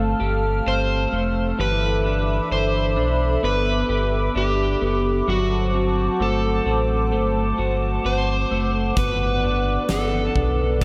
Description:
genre	dream pop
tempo	65 BPM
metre	4/4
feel	straight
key	unclear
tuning	A4 = 441 Hz
part	hollow soft pad	sustained chords	0.0-10.8 s	A4 to F6	-28 LUFS	equal	chorus
part	electric guitar at the edge of break-up	arpeggios	0.0-10.8 s	E3 to G4	-29 LUFS	equal	ensemble chorus, diffuse ambient delay
part	sub bass with octave	bass	0.0-10.8 s	F1 to B1	-26 LUFS	equal	none
part	overdriven slide guitar	melody	0.7-10.8 s	F#4 to C5	-27 LUFS	equal	diffuse ambient delay
part	huge arena drum kit	drums	9.0-10.8 s	hi-hat, kick drum, snare drum	-28 LUFS	equal	none
room	moderate plate reverb, RT60 3.5 s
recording	dreamy mix soaked in reverb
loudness	-21 LUFS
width	mono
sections	0.0-10.8 A section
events	none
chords	0.0 Fmaj7/G; 1.6 Cmaj9/G; 5.3 D7/G; 9.0 Gmaj7

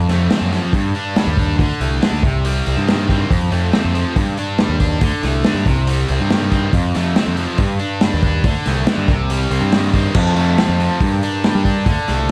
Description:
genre	indie rock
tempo	140 BPM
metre	4/4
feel	straight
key	F mixolydian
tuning	A4 = 442 Hz
part	cranked stack guitar	riff	0.0-12.3 s	F2 to D4	-23 LUFS	equal	overdrive
part	growling picked electric bass	bass	0.0-12.3 s	C2 to G3	-21 LUFS	equal	overdrive
part	vintage drum kit	drums	0.1-12.2 s	crash cymbal, hi-hat, kick drum, snare drum	-21 LUFS	equal	none
part	combo organ	sustained chords	10.2-12.3 s	C4 to A5	-26 LUFS	equal	spring reverb
room	light reverb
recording	dark, warm production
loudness	-17 LUFS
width	mono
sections	0.0-10.2 A section; 10.2-12.3 A section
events	none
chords	0.0 F; 0.7 G5; 1.6 D5; 2.2 Cm; 3.3 F; 4.2 G5; 5.0 D5; 5.7 Cm; 6.7 F; 7.6 G5; 8.4 D5; 9.1 Cm; 10.2 F; 11.0 Gmadd9

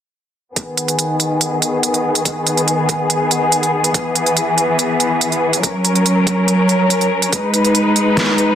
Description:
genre	heavy wobble dubstep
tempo	142 BPM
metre	4/4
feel	half-time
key	G# minor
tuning	A4 = 440 Hz
part	clear studio string section	sustained chords	0.6-8.6 s	D#3 to B4	-15 LUFS	left 1 dB	sidechain pumping, low-pass filter
part	dubstep drum kit	drums	0.6-8.5 s	hi-hat, snare drum	-18 LUFS	right 3 dB	none
part	electronic kick drum	drums	0.6-7.4 s	none	-23 LUFS	left 1 dB	high-pass filter on kick
room	moderate digital room reverb, RT60 1.0 s, digital ambience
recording	dense, heavily limited modern master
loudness	-14 LUFS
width	side -9 dB against mid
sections	0.6-8.6 A section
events	filter sweep on string section 0.6-8.6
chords	0.6 G#m; 3.9 E; 5.6 F#; 7.3 G#m

